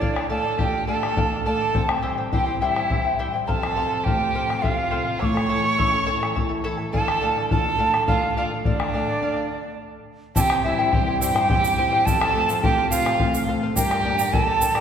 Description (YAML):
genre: andean folk, Andean ensemble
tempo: 70 BPM (dotted quarters)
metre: 6/8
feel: straight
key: D minor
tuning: A4 = 440 Hz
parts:
  - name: quena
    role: melody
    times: 0.0-14.8 s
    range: D5 to D6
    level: -24 LUFS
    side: right 3 dB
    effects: none
  - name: rich violin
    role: second line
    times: 0.0-14.8 s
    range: D4 to C#5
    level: -29 LUFS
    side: right 4 dB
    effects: none
  - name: charango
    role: accompaniment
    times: 0.0-14.8 s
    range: E4 to Bb5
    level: -28 LUFS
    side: left 3 dB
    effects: none
  - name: flamenco guitar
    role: accompaniment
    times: 0.0-14.8 s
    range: F2 to A4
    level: -28 LUFS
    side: left 2 dB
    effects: none
  - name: bombo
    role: percussion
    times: 0.0-14.8 s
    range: none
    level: -25 LUFS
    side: left 2 dB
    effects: none
  - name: egg shaker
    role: percussion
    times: 10.4-14.7 s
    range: none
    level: -30 LUFS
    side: right 7 dB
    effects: none
room: wet concert hall reverb, RT60 2.3 s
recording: recorded in a church or concert hall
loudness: -19 LUFS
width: side -8 dB against mid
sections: 0.0-10.4 A section; 10.4-14.8 B section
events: stop 9.5-10.4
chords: 0.0 Dm; 1.8 C; 3.5 F; 5.2 A; 6.9 Dm; 10.4 C; 12.1 F; 13.8 Gm